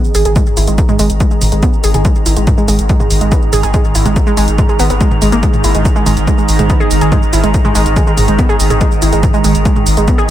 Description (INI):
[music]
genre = driving peak-time techno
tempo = 142 BPM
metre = 4/4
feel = straight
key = unclear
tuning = A4 = 440 Hz
[part]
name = warbly dusty pluck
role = riff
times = 0.0-10.2 s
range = G#3 to G#4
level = -17 LUFS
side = right 1 dB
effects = chorus, sidechain pumping, ping-pong delay
[part]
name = swarming drone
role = drone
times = 0.1-10.3 s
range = G#2 to D#3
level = -19 LUFS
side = right 1 dB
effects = built-in reverb, sidechain pumping
[part]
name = punchy analog drum machine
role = drums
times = 0.0-10.3 s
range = hi-hat, shaker, toms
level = -20 LUFS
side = right 1 dB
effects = overdrive, sidechain pumping on hats, sidechain pumping on perc, sidechain pumping on toms, sidechain pumping on cymbals
[part]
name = granular cloud pad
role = texture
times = 0.0-10.3 s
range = G#4 to A#5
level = -21 LUFS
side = right 2 dB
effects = built-in reverb, sidechain pumping
[part]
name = saturated sub bass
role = bass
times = 0.1-10.1 s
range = G#1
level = -14 LUFS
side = equal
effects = overdrive, sidechain pumping, low-pass filter
[part]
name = electronic kick drum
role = drums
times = 0.4-10.2 s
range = none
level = -12 LUFS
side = equal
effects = none
[sound]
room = light reverb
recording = none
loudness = -9 LUFS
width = side -12 dB against mid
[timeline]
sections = 0.0-10.3 A section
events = none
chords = 0.0 G#5